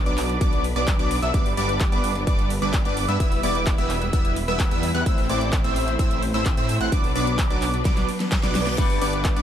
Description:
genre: EDM, festival progressive house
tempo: 129 BPM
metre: 4/4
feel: straight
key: unclear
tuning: A4 = 440 Hz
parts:
  - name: warm studio string section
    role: sustained chords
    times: 0.0-9.4 s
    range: F#3 to C5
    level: -32 LUFS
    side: equal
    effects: sidechain pumping
  - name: plucky unison lead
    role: arpeggios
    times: 0.0-9.4 s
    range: D6 to F#6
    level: -29 LUFS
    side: right 1 dB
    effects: wide subtle chorus, sidechain pumping, tape echo
  - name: supersaw stab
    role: riff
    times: 0.0-9.4 s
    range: F#3 to F#5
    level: -26 LUFS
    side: equal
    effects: lush chorus, sidechain pumping, tape echo
  - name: detuned saw bass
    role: bass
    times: 0.0-9.4 s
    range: E1 to A2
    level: -28 LUFS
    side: equal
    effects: sidechain pumping
  - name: big-room dance drum kit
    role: drums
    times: 0.1-9.4 s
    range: crash cymbal, handclaps, hi-hat, snare drum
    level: -31 LUFS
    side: equal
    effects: none
  - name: electronic kick drum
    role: drums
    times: 0.4-9.3 s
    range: none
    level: -22 LUFS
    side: equal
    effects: none
  - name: reverse cymbal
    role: sound effects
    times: 8.1-8.8 s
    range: none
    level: -36 LUFS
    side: left 4 dB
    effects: none
  - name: clean electric guitar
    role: accompaniment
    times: 8.8-9.4 s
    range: G2 to B4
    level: -28 LUFS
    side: left 4 dB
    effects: sidechain pumping
room: little or no reverb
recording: lossy compression artefacts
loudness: -20 LUFS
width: side -10 dB against mid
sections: 0.0-9.4 A section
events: drum fill 7.9-8.8; reverse cymbal 8.1-8.8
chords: 0.0 Bm; 1.3 G; 3.2 Em; 5.1 Am; 6.9 Bm; 8.8 G

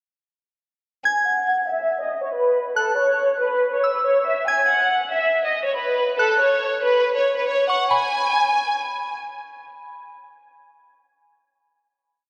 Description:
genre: hip hop, drill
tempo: 140 BPM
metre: 4/4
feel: half-time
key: G# phrygian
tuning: A4 = 439 Hz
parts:
  - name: rich studio violin section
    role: melody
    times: 1.0-9.2 s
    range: A4 to G#5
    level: -22 LUFS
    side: equal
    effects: low-pass filter, analog delay
  - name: soft synth bell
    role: second line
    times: 1.1-9.2 s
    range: B5 to G#6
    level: -26 LUFS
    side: equal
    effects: chorus, analog delay
room: wet lush hall reverb, RT60 2.5 s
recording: dreamy mix soaked in reverb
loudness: -21 LUFS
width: mono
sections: 1.0-7.9 breakdown; 7.9-11.3 final chord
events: filter sweep on violin section 1.0-7.9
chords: 1.0 N.C.; 7.9 G#m

